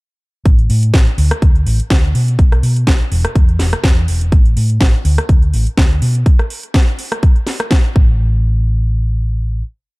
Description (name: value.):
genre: filtered disco house.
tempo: 124 BPM.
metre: 4/4.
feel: swing 54% on 16ths.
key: unclear.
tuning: A4 = 440 Hz.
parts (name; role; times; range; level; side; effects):
hollow-body short-scale fingered electric bass; bass; 0.5-9.6 s; E1 to B2; -14 LUFS; equal; sidechain pumping.
electronic kick drum; drums; 0.5-8.1 s; none; -10 LUFS; equal; none.
house drum kit; drums; 0.5-7.9 s; hi-hat, rim click, snare drum; -20 LUFS; equal; sidechain pumping on hats.
room: little or no reverb.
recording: dark, warm production.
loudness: -11 LUFS.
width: side -24 dB against mid.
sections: 0.5-8.2 drop; 8.2-10.0 final hit.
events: drop 0.5-8.2.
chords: none.